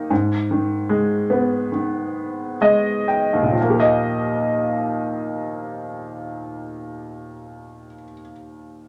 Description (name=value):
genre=folk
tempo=60-79 BPM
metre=4/4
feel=straight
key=Eb major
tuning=A4 = 440 Hz
part: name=warm grand piano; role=accompaniment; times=0.0-8.9 s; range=Eb2 to G5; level=-22 LUFS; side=equal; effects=none
room=moderate club reverb, RT60 0.6 s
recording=none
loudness=-21 LUFS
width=mono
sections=0.0-3.6 A section; 3.6-7.6 B section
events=slowing down 0.0-3.6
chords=0.1 Abm; 3.6 Ebadd9